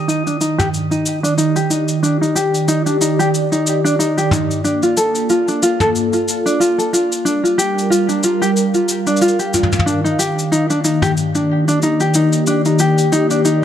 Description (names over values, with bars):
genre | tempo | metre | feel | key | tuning
folktronica | 92 BPM | 4/4 | swing 56% on 16ths | Eb lydian | A4 = 440 Hz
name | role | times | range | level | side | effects
warm analog pad | sustained chords | 0.0-13.6 s | Eb3 to F5 | -18 LUFS | right 1 dB | chorus
tenor ukulele | arpeggios | 0.0-13.6 s | D4 to A4 | -16 LUFS | left 1 dB | low-pass filter, digital delay
cabasa and toms | drums | 0.1-13.6 s | none | -21 LUFS | left 1 dB | none
room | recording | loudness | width
moderate echo chamber reverb, RT60 2.4 s | dark, warm production | -13 LUFS | side -10 dB against mid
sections
0.0-13.6 A section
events
filter sweep on ukulele 0.0-13.6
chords
0.0 Ebmaj7; 4.6 Bbmaj7; 7.3 Gm7; 9.9 Ebmaj7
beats
0.08 0.73 1.38 | 2.04 2.69 3.34 3.99 | 4.64 5.29 5.95 6.60 | 7.25 7.90 8.56 9.21 | 9.86 10.51 11.16 11.82 | 12.47 13.12